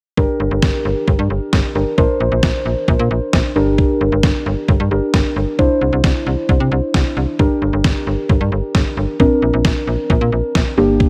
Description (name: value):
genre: synth-pop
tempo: 133 BPM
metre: 4/4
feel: straight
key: G dorian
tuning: A4 = 445 Hz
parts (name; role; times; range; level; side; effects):
- muted felt-like synth keys; accompaniment; 0.2-11.1 s; Bb3 to C5; -20 LUFS; equal; chorus
- slap-like FM bass; bass; 0.2-11.1 s; G1 to C3; -20 LUFS; equal; none
- detuned 8-bit digital drum machine; drums; 0.2-11.1 s; kick drum, snare drum; -19 LUFS; equal; none
room: little or no reverb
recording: none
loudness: -16 LUFS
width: mono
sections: 0.2-11.1 A section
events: none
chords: 0.2 Gm; 2.0 Bbadd9; 3.6 Gm; 5.6 Cadd9; 7.4 Gm; 9.2 Bbadd9